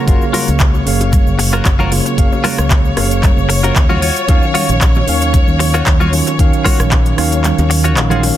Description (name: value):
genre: nu-disco, nu disco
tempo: 114 BPM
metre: 4/4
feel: swing 54% on 16ths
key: Eb minor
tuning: A4 = 440 Hz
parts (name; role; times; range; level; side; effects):
- tine electric piano; accompaniment; 0.0-8.4 s; Db3 to F5; -18 LUFS; right 1 dB; medium stereo tremolo, sidechain pumping, tape echo
- warm symphonic violin section; sustained chords; 0.0-8.4 s; Db5; -22 LUFS; left 3 dB; sidechain pumping
- direct-recorded clean electric guitar; riff; 0.0-8.2 s; F4 to Db5; -20 LUFS; left 3 dB; analog chorus, tape echo
- fingered electric bass with an envelope filter; bass; 0.1-8.3 s; Gb1 to Eb2; -16 LUFS; equal; none
- electronic kick drum; drums; 0.1-7.0 s; none; -12 LUFS; equal; none
- pop drum kit; drums; 0.1-8.3 s; handclaps, hi-hat, rim click; -19 LUFS; equal; none
- cabasa, bongos and congas; percussion; 0.1-8.3 s; none; -25 LUFS; right 3 dB; none
room: little or no reverb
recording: dense, heavily limited modern master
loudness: -10 LUFS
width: side -12 dB against mid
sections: 0.0-8.4 A section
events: kick drops out 7.4-8.4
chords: 0.0 Gbmaj7; 4.0 Ebm9